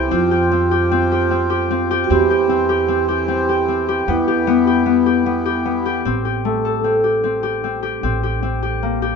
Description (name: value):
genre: contemporary instrumental, chamber music in an uneven meter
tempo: 152 BPM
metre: 5/4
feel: straight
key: A minor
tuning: A4 = 440 Hz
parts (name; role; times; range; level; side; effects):
- vibraphone with soft mallets; second line; 0.0-5.8 s; E4 to G4; -20 LUFS; right 6 dB; none
- hand-pumped harmonium; sustained chords; 0.0-6.0 s; E3 to G4; -23 LUFS; equal; none
- concert harp; arpeggios; 0.0-9.2 s; A3 to A4; -18 LUFS; left 5 dB; none
- upright bass; bass; 0.0-9.2 s; A1 to F2; -25 LUFS; right 2 dB; none
room: light reverb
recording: nothing above 7.8 kHz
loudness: -15 LUFS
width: side -5 dB against mid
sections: 0.0-6.1 A section; 6.1-9.2 B section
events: none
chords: 0.1 Fsus2; 2.1 C/E; 4.1 Em; 6.1 Am7; 8.0 C5/A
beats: | 0.12 0.52 0.91 1.31 1.71 | 2.10 2.50 2.89 3.29 3.68 | 4.08 4.47 4.87 5.26 5.66 | 6.05 6.45 6.85 7.24 7.64 | 8.04 8.43 8.83